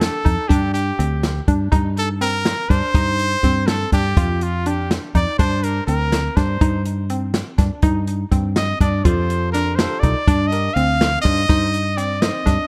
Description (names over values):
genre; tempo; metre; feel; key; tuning
progressive instrumental, band music in an uneven meter; 246 BPM (eighths); 5/8; straight; unclear; A4 = 440 Hz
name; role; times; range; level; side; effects
bright trumpet; melody; 0.0-12.7 s; F4 to F5; -24 LUFS; equal; delay
glassy wavetable pluck; arpeggios; 0.0-12.7 s; C4 to F4; -28 LUFS; equal; chorus, delay
fingered electric bass; bass; 0.0-12.6 s; C2 to G2; -23 LUFS; equal; none
open jazz drum kit; drums; 0.0-12.6 s; hi-hat, kick drum, snare drum; -22 LUFS; equal; none
bell-like tine electric piano; accompaniment; 9.0-12.6 s; C4 to C5; -32 LUFS; equal; subtle chorus
room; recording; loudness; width
light reverb, small room reverb; bright 1980s-style digital production; -19 LUFS; mono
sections
0.0-12.7 A section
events
trumpet solo 0.0-12.7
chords
0.5 G5; 1.7 Cmadd9/G; 4.2 Ebmaj9/F; 5.4 Gm; 6.6 Cmadd9/G; 9.1 Fadd9; 10.3 Gm; 11.5 Cmadd9/G